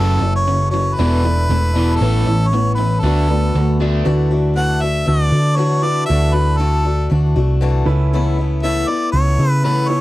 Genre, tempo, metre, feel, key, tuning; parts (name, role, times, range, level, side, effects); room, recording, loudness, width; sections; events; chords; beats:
rock; 118 BPM; 4/4; straight; A4 = 440 Hz
bright harmonica; melody; 0.0-10.0 s; A4 to F#5; -20 LUFS; equal
clear grand piano; accompaniment; 0.0-10.0 s; C#4 to B4; -28 LUFS; right 5 dB
picked swing-style acoustic guitar; accompaniment; 0.0-10.0 s; E2 to F#4; -23 LUFS; left 6 dB
overdriven electric guitar; riff; 0.0-4.0 s; E2 to D4; -21 LUFS; right 1 dB
hollow-body short-scale picked electric bass; bass; 0.0-10.0 s; E1 to D3; -16 LUFS; equal
little or no reverb; dry, close 1970s-style studio recording; -14 LUFS; side -17 dB against mid
0.0-4.1 A section; 4.1-10.0 B section
0.0 F#m7; 1.0 E7sus4; 2.0 Aadd9; 3.0 D6; 4.1 Dadd9; 7.9 Aadd9/C#
0.48 0.99 1.50 | 2.01 2.52 3.03 3.54 | 4.05 4.56 5.07 5.58 | 6.09 6.59 7.10 7.61 | 8.12 8.63 9.13 9.64